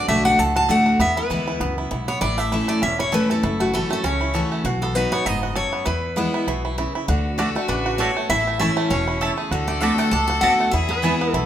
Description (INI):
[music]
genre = bluegrass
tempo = 197 BPM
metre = 4/4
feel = swing 56% on 8ths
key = A major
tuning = A4 = 440 Hz
[part]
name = picked steel-string acoustic guitar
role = melody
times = 0.0-11.5 s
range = F#4 to A5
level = -22 LUFS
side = left 1 dB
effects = none
[part]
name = picked steel-string acoustic guitar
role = accompaniment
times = 0.0-11.5 s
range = E2 to F#4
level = -24 LUFS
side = left 1 dB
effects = none
[part]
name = bluegrass banjo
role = arpeggios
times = 0.0-11.5 s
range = A3 to A4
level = -26 LUFS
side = right 5 dB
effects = none
[part]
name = upright bass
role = bass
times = 0.1-11.5 s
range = E1 to E2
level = -27 LUFS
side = equal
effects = none
[part]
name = clear fiddle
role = second line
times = 7.1-11.5 s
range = C#4 to A4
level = -27 LUFS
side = left 4 dB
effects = none
[part]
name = mandolin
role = stabs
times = 7.4-11.1 s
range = A3 to A5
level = -28 LUFS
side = right 4 dB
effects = none
[sound]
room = wet large studio reverb, RT60 1.3 s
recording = minimal, uncompressed stereo recording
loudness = -18 LUFS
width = side -10 dB against mid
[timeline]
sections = 0.0-11.5 A section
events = none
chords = 0.0 D; 1.0 E; 2.2 A; 3.4 F#m7; 4.7 B; 5.9 E; 7.1 D; 8.3 A; 9.5 D6; 10.7 E